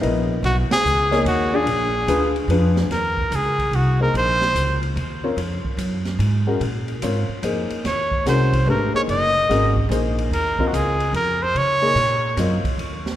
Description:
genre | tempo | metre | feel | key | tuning
modal jazz | 146 BPM | 3/4 | swing 65% on 8ths | Eb dorian | A4 = 439 Hz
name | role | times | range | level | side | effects
warm baby grand piano | accompaniment | 0.0-12.6 s | Ab3 to D#5 | -24 LUFS | left 3 dB | none
upright bass | bass | 0.0-13.2 s | Gb1 to Db3 | -22 LUFS | equal | none
open jazz drum kit | drums | 0.0-13.1 s | hi-hat, kick drum, ride cymbal, snare drum | -30 LUFS | right 1 dB | none
breathy trumpet | melody | 0.4-4.8, 7.9-12.4 s | F#4 to Eb5 | -21 LUFS | equal | none
room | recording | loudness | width
moderate church reverb, RT60 3.4 s | recorded in a church or concert hall | -18 LUFS | side -12 dB against mid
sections
0.0-2.9 A section; 2.9-12.8 B section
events
band accent 0.6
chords
0.0 B; 1.7 A#7b9; 2.9 Eb5; 5.4 Bbm7; 7.8 Ebm6; 10.3 Bbm

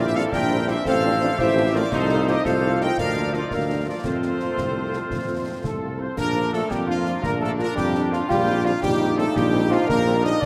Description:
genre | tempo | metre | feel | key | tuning
military-style march for wind band | 113 BPM (dotted quarters) | 6/8 | straight | Bb major | A4 = 440 Hz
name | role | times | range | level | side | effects
warm trumpet section | melody | 0.0-10.4 s | F4 to G5 | -31 LUFS | equal | none
mellow hollow small flute group | second line | 0.0-10.5 s | A4 to Eb6 | -33 LUFS | equal | none
warm euphonium | second line | 0.0-10.5 s | F3 to F4 | -30 LUFS | equal | none
mellow French horn section | accompaniment | 0.0-10.3 s | F3 to F4 | -34 LUFS | equal | none
warm trombone section | sustained chords | 0.0-10.4 s | E3 to F4 | -31 LUFS | equal | none
mellow tuba | bass | 0.0-10.3 s | A1 to F2 | -27 LUFS | equal | none
mellow woodwind section | second line | 0.1-10.5 s | Eb4 to Eb5 | -32 LUFS | equal | none
concert snare drum, concert bass drum and clash cymbals | drums | 0.1-10.5 s | none | -35 LUFS | equal | none
room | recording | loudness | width
wet cathedral reverb, RT60 7.1 s | in a vast, echoing space | -22 LUFS | mono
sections
0.0-6.2 A section; 6.2-10.5 B section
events
none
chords
0.0 C7/Bb; 0.9 F/A; 1.9 F7/C; 3.0 Bb/D; 4.1 F; 6.2 Bb; 8.3 Cm7/Bb

